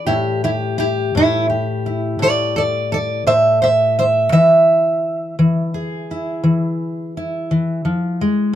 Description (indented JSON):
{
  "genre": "acoustic country blues, solo or duo",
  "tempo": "56 BPM (dotted quarters)",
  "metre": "12/8",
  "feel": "straight",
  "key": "unclear",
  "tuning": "A4 = 441 Hz",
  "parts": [
    { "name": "fingerpicked steel-string acoustic guitar", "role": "solo", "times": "0.0-8.6 s", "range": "A2 to E5", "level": "-15 LUFS", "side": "equal", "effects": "none" }
  ],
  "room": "light reverb",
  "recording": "close, detailed microphones",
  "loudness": "-15 LUFS",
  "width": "side -11 dB against mid",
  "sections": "0.0-8.6 A section",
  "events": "none",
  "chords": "0.1 A7(no3); 4.3 E"
}